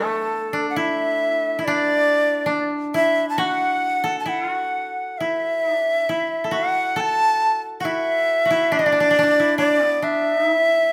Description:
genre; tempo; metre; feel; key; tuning
japanese traditional, Japanese chamber music; 65-71 BPM; 2/4; rubato; E suspended pentatonic; A4 = 440 Hz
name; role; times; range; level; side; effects
bright shakuhachi; melody; 0.0-10.9 s; A4 to A5; -21 LUFS; equal; none
koto; second line; 0.0-10.9 s; A3 to B4; -27 LUFS; equal; none
room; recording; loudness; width
moderate recital hall reverb, RT60 1.4 s; none; -20 LUFS; mono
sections
0.0-10.9 A section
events
none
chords
none

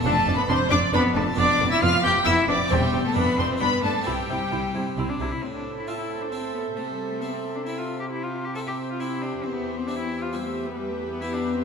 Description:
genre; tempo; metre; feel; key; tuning
classical, baroque-style concerto movement with solo episodes; 134 BPM; 3/4; straight; C major, A minor from 5.4 s; A4 = 441 Hz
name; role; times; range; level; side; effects
rich cello; melody; 0.0-11.6 s; G3 to A4; -28 LUFS; left 2 dB; none
warm chamber violin section; melody; 0.0-11.6 s; E5 to G6; -30 LUFS; left 3 dB; none
warm chamber violin section; second line; 0.0-11.6 s; G4 to G5; -29 LUFS; equal; none
harpsichord; accompaniment; 0.0-11.6 s; E2 to A4; -33 LUFS; left 4 dB; none
warm chamber double bass section; bass; 0.0-5.3 s; E1 to C2; -30 LUFS; right 3 dB; none
warm chamber viola section; accompaniment; 0.1-11.6 s; B3 to A4; -31 LUFS; right 2 dB; none
warm chamber cello section; bass; 0.1-11.6 s; E2 to C3; -30 LUFS; right 3 dB; none
room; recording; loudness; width
wet concert hall reverb, RT60 1.8 s; minimal, uncompressed stereo recording; -22 LUFS; side -6 dB against mid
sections
0.0-5.4 A section; 5.4-11.6 B section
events
none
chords
0.0 Dm/F; 1.4 G7/F; 2.7 C/E; 3.2 Dm/F; 3.6 G; 4.1 C; 5.4 Am; 6.8 Am/C; 8.1 C; 9.4 C/E; 10.8 Em

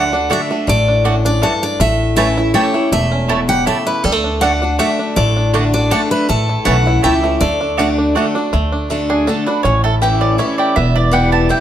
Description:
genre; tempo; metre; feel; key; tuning
bluegrass; 161 BPM; 3/4; straight; D major; A4 = 440 Hz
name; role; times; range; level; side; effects
picked steel-string acoustic guitar; melody; 0.0-8.3 s; A4 to F#5; -18 LUFS; left 1 dB; none
picked steel-string acoustic guitar; accompaniment; 0.0-11.6 s; E2 to F#4; -19 LUFS; left 1 dB; none
bluegrass banjo; arpeggios; 0.0-11.6 s; D3 to G4; -20 LUFS; right 2 dB; none
mandolin; stabs; 0.0-11.6 s; A3 to A5; -19 LUFS; right 4 dB; none
upright bass; bass; 0.0-11.5 s; E1 to D2; -17 LUFS; equal; none
room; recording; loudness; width
moderate studio reverb, RT60 0.9 s; none; -12 LUFS; side -10 dB against mid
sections
0.0-8.5 A section; 8.5-11.6 B section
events
mandolin solo 8.5-11.6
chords
0.0 D; 1.8 A; 4.0 D; 6.3 A; 7.4 D; 9.6 A; 10.8 Em

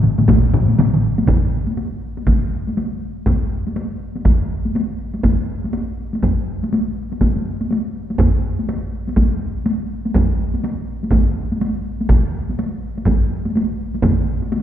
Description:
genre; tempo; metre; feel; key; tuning
japanese traditional, taiko drum ensemble; 122 BPM; 4/4; swing 60% on 16ths; none; none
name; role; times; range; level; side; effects
taiko ensemble; percussion; 0.0-1.0 s; none; -18 LUFS; left 3 dB; none
taiko ensemble; percussion; 0.0-1.0 s; none; -20 LUFS; right 2 dB; none
taiko ensemble; percussion; 0.2-14.6 s; none; -22 LUFS; left 1 dB; none
taiko ensemble; percussion; 0.3-14.2 s; none; -19 LUFS; equal; none
room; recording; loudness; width
wet concert hall reverb, RT60 1.8 s; heard from further back in the room; -17 LUFS; side -11 dB against mid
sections
0.0-1.3 A section; 1.3-14.6 B section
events
speeding up 0.0-14.6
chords
none

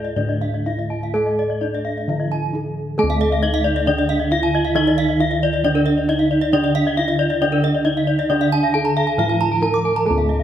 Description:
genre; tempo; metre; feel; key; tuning
Balinese gamelan; 136 BPM; 4/4; straight; D pelog; A4 = 440 Hz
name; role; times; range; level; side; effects
gamelan-type bronze metallophone; melody; 0.0-10.4 s; D4 to Bb4-40c; -22 LUFS; right 2 dB; none
gamelan-type bronze metallophone; accompaniment; 0.0-10.4 s; D3 to A3-45c; -25 LUFS; right 2 dB; none
gamelan-type bronze metallophone; arpeggios; 0.0-10.4 s; D5 to Bb5-40c; -22 LUFS; left 6 dB; none
gamelan-type bronze metallophone; arpeggios; 0.0-10.4 s; Bb4-40c to D6; -26 LUFS; right 6 dB; none
gamelan-type bossed gongs; bass; 0.0-10.4 s; D2 to A4-45c; -22 LUFS; left 1 dB; none
room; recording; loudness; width
moderate scoring stage reverb, RT60 1.7 s; none; -16 LUFS; side -10 dB against mid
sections
0.0-3.0 A section; 3.0-10.4 B section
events
none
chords
none

